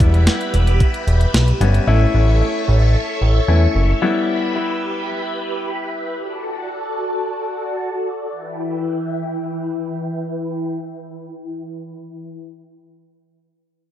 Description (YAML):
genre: synth-pop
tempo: 112 BPM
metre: 4/4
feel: straight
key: E dorian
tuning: A4 = 439 Hz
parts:
  - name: clear concert grand piano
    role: accompaniment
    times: 0.0-6.1 s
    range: G3 to E4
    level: -22 LUFS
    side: left 3 dB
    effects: low-pass filter, tape echo
  - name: phased string machine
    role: sustained chords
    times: 0.0-12.3 s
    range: E3 to C#6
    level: -24 LUFS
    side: equal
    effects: ensemble chorus, phaser, low-pass filter
  - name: fat analog bass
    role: bass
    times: 0.0-3.9 s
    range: E1 to E2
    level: -14 LUFS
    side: equal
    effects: none
  - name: clean 12-bit digital drum machine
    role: drums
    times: 0.0-1.9 s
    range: hi-hat, kick drum, snare drum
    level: -18 LUFS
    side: equal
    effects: overdrive
room: light reverb, digital ambience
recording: echo-heavy mix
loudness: -17 LUFS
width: side -11 dB against mid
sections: 0.0-8.3 A section; 8.3-12.6 B section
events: filter sweep 0.0-8.3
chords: 0.0 Em; 1.9 A; 4.0 Em; 6.2 D; 8.3 Em